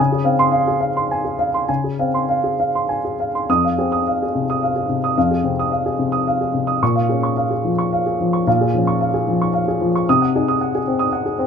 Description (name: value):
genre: neoclassical minimalist piano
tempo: 97-114 BPM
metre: 3/4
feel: rubato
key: F minor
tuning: A4 = 440 Hz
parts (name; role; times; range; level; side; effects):
- dark upright piano; solo; 0.0-11.5 s; F2 to Eb6; -16 LUFS; equal; none
room: light reverb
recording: minimal, uncompressed stereo recording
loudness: -16 LUFS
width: side -6 dB against mid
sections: 0.0-3.5 A section; 3.5-11.5 B section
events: none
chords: 0.0 Dbmaj7; 3.5 Fm7; 6.8 Bbm7; 10.1 Ab7/C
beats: 0.53 1.09 | 1.68 2.29 2.90 | 3.48 4.05 4.61 | 5.16 5.70 6.25 | 6.81 7.35 7.91 | 8.46 9.00 9.53 | 10.06 10.59 11.12